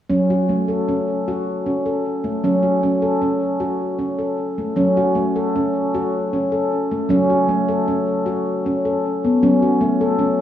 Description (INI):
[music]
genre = world meditative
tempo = 52 BPM (dotted quarters)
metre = 6/8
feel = straight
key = F# minor pentatonic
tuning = A4 = 440 Hz
[part]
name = handpan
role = arpeggios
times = 0.1-10.4 s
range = F#3 to A4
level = -17 LUFS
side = equal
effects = diffuse ambient delay
[sound]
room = wet scoring stage reverb, RT60 1.9 s, small room ambience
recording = worn, warbling old tape, cassette tape, warbly pitch drift, small room reverb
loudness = -17 LUFS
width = side -10 dB against mid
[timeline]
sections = 0.1-4.8 A section; 4.8-10.4 B section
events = none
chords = 0.1 F#m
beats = | 0.10 1.27 | 2.43 3.60 | 4.76 5.93 | 7.09 8.26 | 9.42